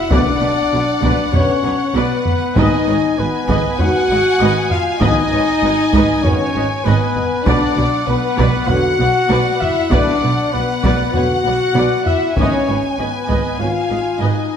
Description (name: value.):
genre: cinematic, epic orchestral film score.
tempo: 98 BPM.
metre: 4/4.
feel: straight.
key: unclear.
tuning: A4 = 440 Hz.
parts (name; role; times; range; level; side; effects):
clear symphonic violin section; melody; 0.0-14.6 s; F#5 to G#5; -24 LUFS; left 3 dB; none.
warm symphonic violin section; second line; 0.0-14.6 s; B4 to F#5; -25 LUFS; left 3 dB; none.
warm French horn section; sustained chords; 0.0-14.6 s; B3 to F#4; -19 LUFS; left 3 dB; none.
mellow trumpet; stabs; 0.0-14.6 s; B4 to F#5; -23 LUFS; equal; none.
warm symphonic viola section; accompaniment; 0.1-14.5 s; D4 to D#5; -25 LUFS; right 1 dB; none.
mellow trombone section; sustained chords; 0.1-13.8 s; D3 to B3; -27 LUFS; right 1 dB; none.
clear symphonic double bass section; bass; 0.1-14.3 s; G#1 to B1; -23 LUFS; right 4 dB; none.
warm symphonic cello section; bass; 0.1-14.3 s; G#2 to B2; -22 LUFS; right 3 dB; none.
taiko ensemble; drums; 0.1-13.9 s; none; -20 LUFS; equal; none.
timpani; percussion; 7.5-8.3 s; B2; -30 LUFS; right 1 dB; none.
room: moderate scoring stage reverb, RT60 1.6 s.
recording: none.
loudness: -13 LUFS.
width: side -8 dB against mid.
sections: 0.0-14.6 A section.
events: none.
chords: 0.0 Bm; 2.6 G#m; 7.5 Bm; 12.4 G#m.